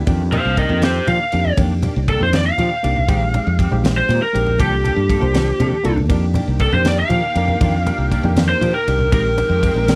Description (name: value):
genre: electric jazz fusion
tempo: 80 BPM (dotted quarters)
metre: 6/8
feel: straight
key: unclear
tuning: A4 = 439 Hz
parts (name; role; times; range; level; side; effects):
- barky reed electric piano; accompaniment; 0.0-10.0 s; Ab3 to C5; -29 LUFS; equal; overdrive
- lush unison pad; sustained chords; 0.0-0.1, 6.1-10.0 s; Eb3 to G4; -32 LUFS; equal; chorus
- clean electric guitar; stabs; 0.1-10.0 s; Eb3 to A4; -31 LUFS; equal; ensemble chorus
- fretless electric bass; bass; 0.1-10.0 s; Bb1 to F3; -21 LUFS; equal; lush chorus
- tight funk drum kit; drums; 0.1-10.0 s; kick drum, ride cymbal, snare drum; -24 LUFS; equal; none
- congas; percussion; 0.1-10.0 s; none; -26 LUFS; equal; none
- lead guitar through a small cranked amp; melody; 0.3-10.0 s; G4 to F5; -22 LUFS; equal; overdrive
room: light reverb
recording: vinyl crackle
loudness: -17 LUFS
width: mono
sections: 0.1-10.0 A section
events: lead electric guitar solo 0.1-10.0; drum fill 5.7-6.1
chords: 0.1 F13sus4; 3.1 Bb13sus4; 4.6 C13sus4; 6.1 F13sus4; 9.1 Bb13sus4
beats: | 0.07 0.83 | 1.58 2.33 | 3.09 3.84 | 4.59 5.35 | 6.10 6.86 | 7.61 8.37 | 9.12 9.88